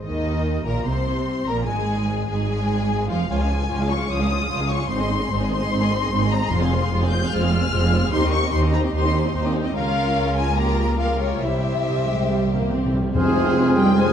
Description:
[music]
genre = classical, dramatic, fast romantic movement for symphony orchestra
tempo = 147 BPM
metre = 4/4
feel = rubato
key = Ab major, F minor from 6.5 s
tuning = A4 = 440 Hz
[part]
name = warm symphonic violin section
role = melody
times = 0.0-14.1 s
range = C5 to G6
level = -26 LUFS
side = left 4 dB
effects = none
[part]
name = clear studio violin section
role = second line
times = 0.0-14.1 s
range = Eb4 to F5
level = -29 LUFS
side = left 5 dB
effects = none
[part]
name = rich symphonic viola section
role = accompaniment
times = 0.0-14.1 s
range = Eb3 to Ab4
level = -27 LUFS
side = right 1 dB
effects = none
[part]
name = rich symphonic cello section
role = bass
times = 0.0-14.0 s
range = C2 to Ab3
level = -25 LUFS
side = right 3 dB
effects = none
[part]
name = rich symphonic double bass section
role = bass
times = 0.0-14.1 s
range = F1 to F2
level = -25 LUFS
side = right 1 dB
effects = none
[part]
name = timpani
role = percussion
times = 6.5-7.1, 11.4-13.7 s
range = F2 to C3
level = -26 LUFS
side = left 1 dB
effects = none
[part]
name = cymbal swell and tam-tam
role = percussion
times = 9.8-14.1 s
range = none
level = -32 LUFS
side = left 2 dB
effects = none
[part]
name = mellow clarinet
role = second line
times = 13.1-14.1 s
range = Ab4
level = -27 LUFS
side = left 2 dB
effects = none
[part]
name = mellow cor anglais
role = second line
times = 13.2-14.1 s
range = C5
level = -30 LUFS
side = right 2 dB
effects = none
[part]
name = mellow flute section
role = second line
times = 13.2-14.1 s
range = F6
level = -29 LUFS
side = right 1 dB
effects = none
[part]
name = clear trombone section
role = sustained chords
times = 13.2-14.1 s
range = F3 to C4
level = -29 LUFS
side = right 1 dB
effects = none
[part]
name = dark French horn section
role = sustained chords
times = 13.2-14.1 s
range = C4 to Ab4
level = -23 LUFS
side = equal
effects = none
[part]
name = clear trumpet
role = stabs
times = 13.2-14.1 s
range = Ab4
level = -29 LUFS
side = right 2 dB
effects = none
[part]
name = mellow tuba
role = bass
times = 13.2-14.1 s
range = F1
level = -26 LUFS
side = right 1 dB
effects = none
[sound]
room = moderate scoring stage reverb, RT60 1.5 s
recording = dark, warm production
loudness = -19 LUFS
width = side -8 dB against mid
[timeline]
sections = 0.0-13.2 A section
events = timpani fill 11.4-13.2; band accent 13.2-13.6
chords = 0.0 Bbsus24; 1.7 Fm/Ab; 3.3 Db; 4.9 Ab; 6.5 Fm; 8.1 Cm/Eb; 9.8 Bbm/Db; 10.6 Gm7b5/Db; 11.4 C; 13.2 Fm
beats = | 0.05 0.46 0.87 1.28 | 1.69 2.10 2.50 2.90 | 3.31 3.71 4.11 4.51 | 4.91 5.31 5.72 6.11 | 6.51 6.91 7.31 7.72 | 8.12 8.53 8.95 9.35 | 9.76 10.17 10.58 11.00 | 11.43 11.86 12.29 12.73 | 13.16 13.57 13.97

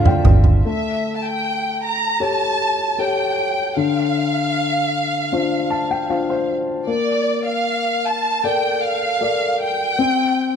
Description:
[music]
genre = pop ballad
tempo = 77 BPM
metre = 4/4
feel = straight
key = D minor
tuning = A4 = 439 Hz
[part]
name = warm concert grand piano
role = accompaniment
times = 0.0-10.6 s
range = D3 to A5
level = -21 LUFS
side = left 4 dB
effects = none
[part]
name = warm studio string section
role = sustained chords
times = 0.0-0.6 s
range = D3 to E5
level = -32 LUFS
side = right 1 dB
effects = none
[part]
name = fingerpicked steel-string acoustic guitar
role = arpeggios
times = 0.0-1.2 s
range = D3 to A4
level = -30 LUFS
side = right 6 dB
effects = none
[part]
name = vintage muted fingered electric bass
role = bass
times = 0.0-0.6 s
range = G1 to D2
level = -14 LUFS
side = equal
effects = none
[part]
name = toms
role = drums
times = 0.1-0.6 s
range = none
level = -16 LUFS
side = right 2 dB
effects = none
[part]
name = warm studio violin section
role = melody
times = 0.7-10.6 s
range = D5 to Bb5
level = -20 LUFS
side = right 1 dB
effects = none
[sound]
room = light reverb, small room ambience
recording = dark, warm production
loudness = -17 LUFS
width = side -7 dB against mid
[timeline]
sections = 0.6-10.6 A section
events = drum fill 0.0-0.6; grand piano fill 0.0-0.6, 5.3-6.9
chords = 0.0 Dm7; 0.6 A7; 3.8 Dm7; 6.9 Bbmaj7; 10.0 C5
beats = | 0.64 1.42 2.20 2.98 | 3.76 4.54 5.32 6.10 | 6.88 7.66 8.44 9.21 | 9.99

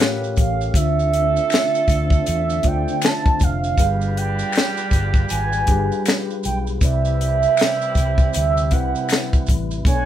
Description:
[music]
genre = R&B, neo-soul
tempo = 79 BPM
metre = 4/4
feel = swing 63% on 16ths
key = unclear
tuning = A4 = 440 Hz
[part]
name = mellow tine electric piano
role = accompaniment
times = 0.0-10.1 s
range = A2 to G5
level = -27 LUFS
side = left 3 dB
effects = slow stereo tremolo
[part]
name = mellow tonewheel organ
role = sustained chords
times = 0.0-10.1 s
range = C3 to B4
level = -32 LUFS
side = right 2 dB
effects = slow rotary speaker, chorus vibrato
[part]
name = clear horn section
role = stabs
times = 0.0-10.1 s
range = F#3 to B4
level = -30 LUFS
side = right 2 dB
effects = none
[part]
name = compact cocktail drum kit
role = drums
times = 0.0-10.1 s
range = finger snaps, hi-hat, kick drum, snare drum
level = -18 LUFS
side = equal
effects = none
[part]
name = maracas and finger snaps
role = percussion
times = 0.2-10.1 s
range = none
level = -33 LUFS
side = left 1 dB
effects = none
[part]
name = mellow horn-like synth lead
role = melody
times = 0.4-10.1 s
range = E5 to A5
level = -22 LUFS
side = right 5 dB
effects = chorus, phaser
[part]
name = vintage muted fingered electric bass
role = bass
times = 0.4-10.1 s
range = F1 to E2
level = -22 LUFS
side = equal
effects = none
[sound]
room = moderate studio reverb, RT60 0.5 s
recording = band playing live in one room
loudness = -16 LUFS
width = side -11 dB against mid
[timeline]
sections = 0.0-10.1 A section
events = none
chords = 0.0 A7b13; 0.7 Dm9; 3.8 G7b9; 6.8 Cmaj7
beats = | 0.74 1.50 2.26 3.02 | 3.78 4.54 5.30 6.06 | 6.82 7.58 8.34 9.10 | 9.86

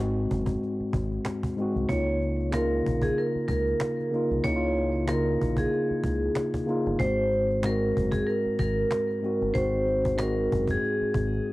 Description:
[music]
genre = hip hop, boom-bap hip-hop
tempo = 94 BPM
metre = 4/4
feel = swing 56% on 16ths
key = Db major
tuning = A4 = 440 Hz
[part]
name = mellow tine electric piano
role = accompaniment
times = 0.0-11.5 s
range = Ab2 to Gb4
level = -28 LUFS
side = left 1 dB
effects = medium stereo tremolo, high-pass filter, low-pass filter, cassette tape
[part]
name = deep dub fingered electric bass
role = bass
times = 0.0-11.4 s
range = Gb1 to Db2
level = -30 LUFS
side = equal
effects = tube saturation
[part]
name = cajon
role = drums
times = 0.2-11.4 s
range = none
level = -32 LUFS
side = equal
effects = cassette tape
[part]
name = finger snap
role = percussion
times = 1.2-10.4 s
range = none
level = -39 LUFS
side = right 4 dB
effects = none
[part]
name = vibraphone with medium hard mallets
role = melody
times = 1.9-11.4 s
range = Ab4 to Db5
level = -28 LUFS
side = right 1 dB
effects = high-pass filter, low-pass filter
[sound]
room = studio ambience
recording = home recording on cassette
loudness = -24 LUFS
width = side -19 dB against mid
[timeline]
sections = 0.0-11.5 A section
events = break 0.0-1.9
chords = 0.0 Ab7; 1.9 Db69; 7.0 Ab7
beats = 0.61 1.25 | 1.89 2.53 3.17 3.81 | 4.45 5.08 5.72 6.36 | 7.00 7.64 8.28 8.91 | 9.55 10.19 10.83 11.47

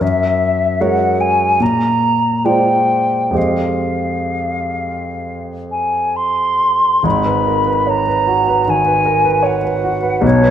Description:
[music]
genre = classical, impressionist duo for flute and grand piano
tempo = 62-79 BPM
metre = 4/4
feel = rubato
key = F minor, G# minor from 7.1 s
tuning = A4 = 440 Hz
[part]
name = mellow hollow silver concert flute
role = melody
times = 0.0-10.5 s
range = C#5 to C6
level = -16 LUFS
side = equal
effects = none
[part]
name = clear concert grand piano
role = accompaniment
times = 0.0-10.5 s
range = G#1 to Eb5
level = -17 LUFS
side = right 1 dB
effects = none
[sound]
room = wet recital hall reverb, RT60 1.8 s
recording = none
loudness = -13 LUFS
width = side -9 dB against mid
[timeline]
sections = 0.0-7.1 A section; 7.1-10.5 B section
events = none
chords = 0.0 Gb9; 1.6 Bb9; 3.4 Fm9; 7.1 G#m7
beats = | 0.01 0.81 1.60 2.44 | 3.36 4.31 5.25 6.16 | 7.05 7.89 8.68 9.45 | 10.24

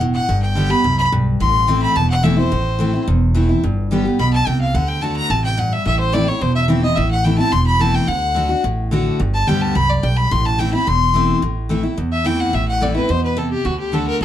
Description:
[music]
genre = bluegrass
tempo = 216 BPM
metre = 4/4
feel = straight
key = A dorian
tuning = A4 = 439 Hz
[part]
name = picked steel-string acoustic guitar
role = accompaniment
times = 0.0-14.2 s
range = E2 to G4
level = -19 LUFS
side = left 1 dB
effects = none
[part]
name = upright bass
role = bass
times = 0.0-14.2 s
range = E1 to E2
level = -19 LUFS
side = right 1 dB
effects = none
[part]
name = clear fiddle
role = melody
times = 0.1-14.2 s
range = F#4 to C6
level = -19 LUFS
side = left 1 dB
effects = none
[sound]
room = light reverb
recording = dark, warm production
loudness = -15 LUFS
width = side -11 dB against mid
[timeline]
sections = 0.0-2.5 A section; 2.5-11.4 A section; 11.4-14.2 B section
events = fiddle solo 0.0-11.4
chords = 0.3 G; 1.4 Am; 3.6 G; 4.7 D; 5.9 Am; 8.1 D; 9.2 G; 10.3 Am; 13.7 D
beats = 0.01 | 0.29 0.57 0.85 1.13 | 1.41 1.69 1.96 2.24 | 2.52 2.80 3.08 3.36 | 3.63 3.91 4.19 4.47 | 4.75 5.03 5.30 5.58 | 5.86 6.14 6.42 6.69 | 6.97 7.25 7.53 7.81 | 8.08 8.36 8.64 8.92 | 9.20 9.48 9.75 10.03 | 10.31 10.59 10.87 11.15 | 11.42 11.70 11.98 12.26 | 12.54 12.82 13.10 13.37 | 13.65 13.93 14.21

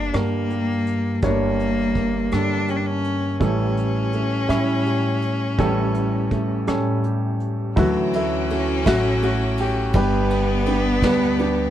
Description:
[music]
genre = acoustic folk-pop ballad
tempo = 55 BPM (dotted quarters)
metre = 6/8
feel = straight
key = D major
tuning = A4 = 440 Hz
[part]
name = warm grand piano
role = melody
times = 0.0-11.7 s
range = G1 to E5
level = -23 LUFS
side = right 1 dB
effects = plate reverb
[part]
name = rich cello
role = second line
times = 0.0-11.7 s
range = Bb3 to D4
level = -25 LUFS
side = left 2 dB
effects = none
[part]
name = felt-muted upright piano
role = arpeggios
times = 0.0-11.7 s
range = E3 to G4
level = -29 LUFS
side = right 2 dB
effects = slapback echo
[part]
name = upright bass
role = bass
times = 0.0-11.7 s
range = G1 to A2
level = -25 LUFS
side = equal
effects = none
[part]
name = vintage brush drum kit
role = drums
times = 0.1-11.6 s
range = hi-hat, kick drum, ride cymbal, rim click, snare drum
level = -27 LUFS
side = equal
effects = none
[part]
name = warm studio string section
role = sustained chords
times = 7.8-11.7 s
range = G4 to E6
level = -34 LUFS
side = left 2 dB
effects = none
[sound]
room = light reverb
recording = none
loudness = -19 LUFS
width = side -11 dB against mid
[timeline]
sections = 0.0-7.8 A section; 7.8-11.7 B section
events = cello solo 0.0-7.8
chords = 0.0 Gm; 3.4 A7; 7.8 Dadd9; 9.9 G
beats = 0.14 | 1.23 2.32 | 3.41 4.50 | 5.59 6.68 | 7.77 8.86 | 9.94 11.02

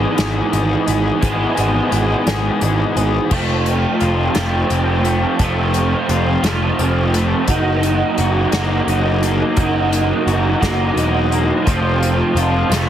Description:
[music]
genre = indie rock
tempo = 58 BPM (dotted quarters)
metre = 6/8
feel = straight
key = unclear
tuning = A4 = 440 Hz
[part]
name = raw garage guitar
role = riff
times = 0.0-12.9 s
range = D#3 to G#4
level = -21 LUFS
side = left 6 dB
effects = overdrive
[part]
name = raw garage guitar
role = riff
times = 0.0-12.9 s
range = G#2 to F#4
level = -18 LUFS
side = right 4 dB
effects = overdrive, ensemble chorus, tape echo
[part]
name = fuzz picked electric bass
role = bass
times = 0.0-12.9 s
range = E1 to G#1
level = -19 LUFS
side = equal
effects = overdrive
[part]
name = unplugged drum kit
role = drums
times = 0.2-12.9 s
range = crash cymbal, hi-hat, kick drum, snare drum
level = -23 LUFS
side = left 1 dB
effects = none
[sound]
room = light reverb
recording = heavily compressed radio sound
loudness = -14 LUFS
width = side -10 dB against mid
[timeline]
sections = 0.0-3.3 A section; 3.3-12.9 B section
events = none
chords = 0.0 E/G#; 3.3 F; 7.5 D#m/F#; 11.7 F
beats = 0.19 | 1.23 2.27 | 3.31 4.35 | 5.40 6.44 | 7.48 8.53 | 9.57 10.62 | 11.67 12.71

